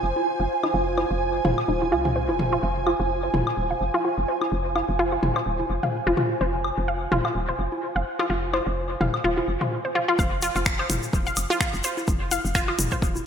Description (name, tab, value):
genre	minimal techno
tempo	127 BPM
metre	4/4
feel	swing 56% on 16ths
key	F minor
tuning	A4 = 440 Hz
part	hollow knocking FM bass	bass	0.0-13.2 s	Eb1 to C2	-28 LUFS	equal	sidechain pumping
part	ethereal airy pad	texture	0.0-9.7 s	F4 to Ab5	-28 LUFS	right 2 dB	ensemble chorus, built-in reverb, sidechain pumping
part	electronic congas, woodblock and toms	percussion	0.2-13.2 s	none	-29 LUFS	left 2 dB	studio reverb, diffuse ambient delay
part	resonant blip pluck	riff	0.4-12.9 s	Eb4 to F5	-26 LUFS	equal	chorus, vintage 12-bit sampler grit, sidechain pumping, diffuse ambient delay
part	electronic kick drum	drums	10.2-13.1 s	none	-26 LUFS	equal	overdrive, studio reverb
part	egg shaker	percussion	10.2-13.2 s	none	-33 LUFS	left 3 dB	none
part	minimal click drum kit	drums	10.4-12.9 s	finger snaps, hi-hat	-28 LUFS	equal	overdrive, studio reverb
room	moderate lush hall reverb, RT60 1.9 s, digital ambience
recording	dreamy mix soaked in reverb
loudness	-22 LUFS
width	side -7 dB against mid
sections	0.0-10.2 A section; 10.2-13.3 B section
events	filter sweep on synth pluck 0.0-10.2; drop 10.2-13.3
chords	0.0 Fm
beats	0.27 | 0.74 1.21 1.69 2.16 | 2.63 3.10 3.57 4.05 | 4.52 4.99 5.46 5.94 | 6.41 6.88 7.35 7.83 | 8.30 8.77 9.24 9.72 | 10.19 10.66 11.13 11.61 | 12.08 12.55 13.02